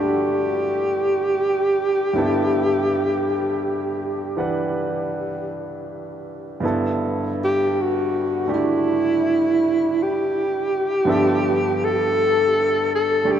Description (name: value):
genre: jazz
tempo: 54 BPM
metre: 4/4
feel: swing 68% on 8ths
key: G major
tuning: A4 = 440 Hz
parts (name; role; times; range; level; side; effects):
- dark alto saxophone; melody; 0.0-13.4 s; E4 to A4; -20 LUFS; equal; none
- clear grand piano; accompaniment; 0.0-13.4 s; G2 to F#5; -24 LUFS; right 1 dB; none
room: wet cathedral reverb, RT60 5.9 s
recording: in a vast, echoing space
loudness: -18 LUFS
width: side -9 dB against mid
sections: 0.0-6.6 A section; 6.6-13.4 B section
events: alto saxophone solo 6.6-13.4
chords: 0.0 G69; 11.1 G13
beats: 1.05 | 2.15 3.25 4.37 5.50 | 6.63 7.75 8.86 9.97 | 11.07 12.17 13.26